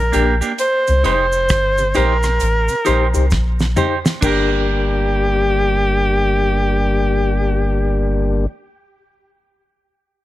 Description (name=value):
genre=roots reggae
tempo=66 BPM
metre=4/4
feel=swing 63% on 16ths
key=G minor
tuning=A4 = 443 Hz
part: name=mellow soprano saxophone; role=melody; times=0.0-8.5 s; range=G4 to C5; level=-19 LUFS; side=equal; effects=tape echo
part: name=mellow tonewheel organ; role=accompaniment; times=0.0-8.5 s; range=C3 to Eb4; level=-23 LUFS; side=left 3 dB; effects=overdrive, chorus vibrato, slow rotary speaker
part: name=soft dub sub bass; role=bass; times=0.0-8.5 s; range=F1 to C2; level=-18 LUFS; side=equal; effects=none
part: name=clean electric guitar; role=accompaniment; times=0.1-8.5 s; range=Bb3 to C5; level=-23 LUFS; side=right 5 dB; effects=spring reverb, tape echo
part: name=mellow reed electric piano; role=stabs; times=0.1-8.5 s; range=D4 to C5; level=-23 LUFS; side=left 7 dB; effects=fast tremolo
part: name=damped 70s drum kit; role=drums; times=0.1-4.5 s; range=crash cymbal, hi-hat, kick drum, rim click, snare drum, toms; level=-22 LUFS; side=right 1 dB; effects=none
part: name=cabasa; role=percussion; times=0.1-4.6 s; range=none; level=-33 LUFS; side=right 5 dB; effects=none
room=light reverb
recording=none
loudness=-14 LUFS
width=side -15 dB against mid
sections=0.0-4.2 A section; 4.2-7.9 B section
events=drum fill 3.3-4.2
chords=0.0 Gm; 0.6 Cm; 4.2 Gm